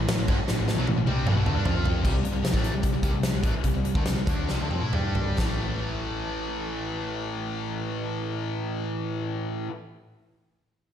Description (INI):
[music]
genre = hard rock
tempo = 130-154 BPM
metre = 4/4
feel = straight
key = A minor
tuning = A4 = 440 Hz
[part]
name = cranked stack guitar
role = riff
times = 0.0-9.7 s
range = G2 to G4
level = -32 LUFS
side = right 7 dB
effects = overdrive
[part]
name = tight distorted guitar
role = riff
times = 0.0-9.7 s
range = G2 to G4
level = -31 LUFS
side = left 8 dB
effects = distortion
[part]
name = hollow-body short-scale picked electric bass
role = bass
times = 0.0-9.6 s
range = G1 to A2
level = -30 LUFS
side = equal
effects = none
[part]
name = huge arena drum kit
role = drums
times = 0.1-5.5 s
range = crash cymbal, hi-hat, kick drum, snare drum, toms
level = -26 LUFS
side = equal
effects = none
[sound]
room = moderate recital hall reverb, RT60 1.3 s, small room ambience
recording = big arena sound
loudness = -24 LUFS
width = side -10 dB against mid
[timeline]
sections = 0.0-2.0 A section; 2.0-5.4 B section; 5.4-9.1 C section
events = drum fill 0.5-2.0, 4.5-5.4; slowing down 2.0-5.4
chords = 0.0 Am; 1.7 F5; 2.0 C5; 4.9 G5; 5.4 A5